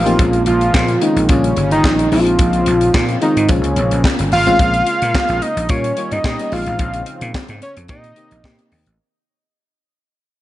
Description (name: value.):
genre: early-eighties boogie funk.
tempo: 109 BPM.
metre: 4/4.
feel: straight.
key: Bb dorian.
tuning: A4 = 441 Hz.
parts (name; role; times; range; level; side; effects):
fat analog lead; melody; 0.0-8.7 s; Db4 to F5; -16 LUFS; equal; none.
brassy analog pad; sustained chords; 0.0-9.0 s; C3 to Db4; -28 LUFS; equal; none.
vintage slap bass; bass; 0.0-9.0 s; G1 to Bb2; -19 LUFS; equal; none.
FM electric piano; accompaniment; 0.1-8.9 s; G3 to C5; -22 LUFS; left 2 dB; chorus.
tight funk drum kit; drums; 0.1-9.0 s; handclaps, hi-hat, kick drum, snare drum; -19 LUFS; equal; gated reverb.
room: small room ambience.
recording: nothing above 10.7 kHz.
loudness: -13 LUFS.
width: side -15 dB against mid.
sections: 0.0-4.6 A section; 4.6-9.0 B section.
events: fade-out 4.6-9.0.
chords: 0.2 Bbm7; 1.3 Eb7; 2.1 Dbmaj7/Bb; 3.5 Bbm9; 4.6 Bbm7; 5.7 Eb7/Bb; 6.5 Dbmaj7; 7.9 Cm7/Bb.